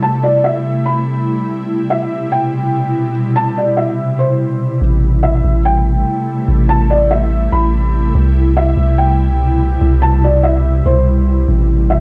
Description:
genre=hip hop, atmospheric cloud-rap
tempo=144 BPM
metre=4/4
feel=half-time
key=A minor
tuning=A4 = 443 Hz
part: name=felt-muted upright piano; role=melody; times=0.0-12.0 s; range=C5 to B5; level=-20 LUFS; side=equal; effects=low-pass filter, slapback echo, plate reverb
part: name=ethereal airy pad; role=sustained chords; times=0.0-12.0 s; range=B2 to E4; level=-19 LUFS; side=equal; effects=ensemble chorus, built-in reverb
part: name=long sustained 808-style bass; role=bass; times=4.8-12.0 s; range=A1 to C2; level=-15 LUFS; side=equal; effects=tube saturation
room=moderate studio reverb, RT60 0.5 s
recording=worn, warbling old tape, cassette tape, warbly pitch drift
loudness=-14 LUFS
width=mono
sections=0.0-4.8 A section; 4.8-12.0 B section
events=none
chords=0.0 Am7; 1.5 Cmaj7; 4.8 Am7; 8.1 Cmaj7; 11.5 Am7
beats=0.23 0.65 1.07 | 1.48 1.90 2.32 2.73 | 3.15 3.57 3.98 4.40 | 4.82 5.23 5.65 6.07 | 6.48 6.90 7.32 7.73 | 8.15 8.57 8.98 9.40 | 9.82 10.23 10.65 11.07 | 11.48 11.90

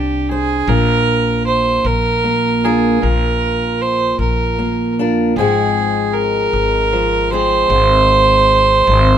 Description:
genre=acoustic folk duo or small band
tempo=51 BPM (dotted quarters)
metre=6/8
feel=straight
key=unclear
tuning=A4 = 440 Hz
part: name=warm fiddle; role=second line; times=0.0-9.2 s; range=G4 to C5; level=-15 LUFS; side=right 3 dB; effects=none
part: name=fingerpicked steel-string acoustic guitar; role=accompaniment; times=0.0-9.2 s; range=Ab2 to C5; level=-18 LUFS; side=left 2 dB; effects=none
part: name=upright bass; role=bass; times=0.0-9.2 s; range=Ab1 to C2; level=-19 LUFS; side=left 1 dB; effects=none
room=moderate studio reverb, RT60 0.8 s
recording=minimal, uncompressed stereo recording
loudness=-12 LUFS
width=side -9 dB against mid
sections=0.0-9.2 A section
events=none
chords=0.0 Csus2; 0.7 Bb; 5.4 Fm/Ab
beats=| 0.68 1.85 | 3.03 4.20 | 5.37 6.54 | 7.71 8.88

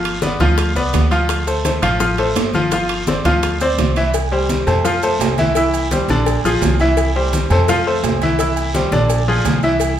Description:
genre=latin, salsa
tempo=169 BPM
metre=4/4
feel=straight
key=C major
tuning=A4 = 439 Hz
part: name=bright concert grand piano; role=accompaniment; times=0.0-9.9 s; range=D3 to F5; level=-17 LUFS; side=left 1 dB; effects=none
part: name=upright bass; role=bass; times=0.0-10.0 s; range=G1 to F2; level=-19 LUFS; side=equal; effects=none
part: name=bongos and cowbell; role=percussion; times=0.0-10.0 s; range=none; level=-28 LUFS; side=left 6 dB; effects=none
part: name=congas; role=percussion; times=0.0-10.0 s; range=none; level=-25 LUFS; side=left 2 dB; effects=none
part: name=timbales and agogo bells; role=percussion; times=0.1-10.0 s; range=none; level=-25 LUFS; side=right 6 dB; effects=none
part: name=guiro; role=percussion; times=0.2-10.0 s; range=none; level=-31 LUFS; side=right 2 dB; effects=none
part: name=maracas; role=percussion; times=0.2-10.0 s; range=none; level=-33 LUFS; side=right 8 dB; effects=none
room=wet large studio reverb, RT60 1.2 s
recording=minimal, uncompressed stereo recording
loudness=-14 LUFS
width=side -10 dB against mid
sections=0.0-4.1 A section; 4.1-10.0 B section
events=none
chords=0.0 G7; 1.3 Dm7; 2.7 G7sus4; 4.1 C5; 4.8 Fmaj7; 5.6 C; 6.3 Bb7; 7.0 C; 7.7 Fmaj7; 8.4 C; 9.1 Bb7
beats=0.23 0.59 0.94 | 1.30 1.65 2.01 2.36 | 2.72 3.07 3.43 3.78 | 4.14 4.49 4.85 5.20 | 5.56 5.91 6.27 6.62 | 6.97 7.33 7.68 8.04 | 8.39 8.74 9.10 9.45 | 9.81

